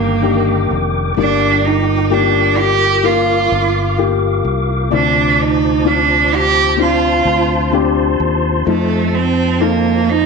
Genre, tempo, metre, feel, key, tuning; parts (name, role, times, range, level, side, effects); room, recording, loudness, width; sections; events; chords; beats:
pop; 64 BPM; 4/4; straight; A4 = 437 Hz
rich cello; melody; 0.0-10.3 s; A3 to G4; -15 LUFS; right 7 dB
felt-muted upright piano; accompaniment; 0.0-10.3 s; G2 to D5; -19 LUFS; left 13 dB
mellow tonewheel organ; sustained chords; 0.0-10.3 s; Eb3 to D6; -21 LUFS; left 1 dB; chorus vibrato, fast rotary speaker
fingered electric bass; bass; 0.0-10.3 s; F1 to F2; -19 LUFS; left 1 dB
wet echo chamber reverb, RT60 1.2 s, small room ambience; 1960s-style stereo with parts hard left and right; -12 LUFS; side -4 dB against mid
0.0-10.3 A section
0.0 Ebmaj7/G; 1.2 Gm7; 4.9 Dm7; 8.7 F7
0.23 | 1.17 2.11 3.04 3.98 | 4.92 5.86 6.79 7.73 | 8.67 9.61